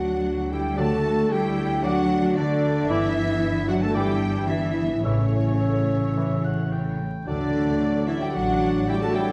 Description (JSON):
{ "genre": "classical, dramatic, fast romantic movement for symphony orchestra", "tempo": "112 BPM", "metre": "4/4", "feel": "rubato", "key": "D major", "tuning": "A4 = 440 Hz", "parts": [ { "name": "rich symphonic violin section", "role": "melody", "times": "0.0-9.3 s", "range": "C#5 to A5", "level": "-41 LUFS", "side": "equal", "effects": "none" }, { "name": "clear clarinet", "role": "second line", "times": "0.0-9.3 s", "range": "C#4 to A4", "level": "-36 LUFS", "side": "equal", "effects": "none" }, { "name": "silver concert flute", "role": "second line", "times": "0.0-9.3 s", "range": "C#5 to A5", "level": "-36 LUFS", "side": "equal", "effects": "none" }, { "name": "warm symphonic violin section", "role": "second line", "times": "0.0-9.3 s", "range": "C#5 to A5", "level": "-39 LUFS", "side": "equal", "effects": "none" }, { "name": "clear symphonic viola section", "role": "accompaniment", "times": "0.0-9.3 s", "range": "A3 to F#4", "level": "-34 LUFS", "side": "equal", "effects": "none" }, { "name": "mellow French horn section", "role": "sustained chords", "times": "0.0-9.3 s", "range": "C#4 to A4", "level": "-29 LUFS", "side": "equal", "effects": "none" }, { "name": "warm trombone section", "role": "sustained chords", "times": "0.0-9.3 s", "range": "E3 to E4", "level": "-35 LUFS", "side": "equal", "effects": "none" }, { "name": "concert harp", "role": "arpeggios", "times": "0.0-9.3 s", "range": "G2 to A4", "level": "-34 LUFS", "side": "equal", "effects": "none" }, { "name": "rich symphonic cello section", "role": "bass", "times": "0.0-9.3 s", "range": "C#3 to A3", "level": "-30 LUFS", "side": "equal", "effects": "none" }, { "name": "rich symphonic double bass section", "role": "bass", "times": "0.0-8.8 s", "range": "G1 to D2", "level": "-31 LUFS", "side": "equal", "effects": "none" }, { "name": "warm oboe", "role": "second line", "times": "0.8-9.3 s", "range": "D5 to G5", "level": "-39 LUFS", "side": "equal", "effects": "none" }, { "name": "warm bassoon", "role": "accompaniment", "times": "0.8-9.3 s", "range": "E3 to F#3", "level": "-36 LUFS", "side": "equal", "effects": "none" } ], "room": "wet recital hall reverb, RT60 1.4 s", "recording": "dark, warm production, vinyl crackle", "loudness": "-23 LUFS", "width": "mono", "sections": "0.0-9.3 A section", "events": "none", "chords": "0.0 D; 2.9 Em7/G; 5.1 A; 7.3 D", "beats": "0.25 | 0.79 1.32 1.85 2.38 | 2.90 3.43 3.96 4.49 | 5.05 5.62 6.17 6.72 | 7.28 7.81 8.35 8.89" }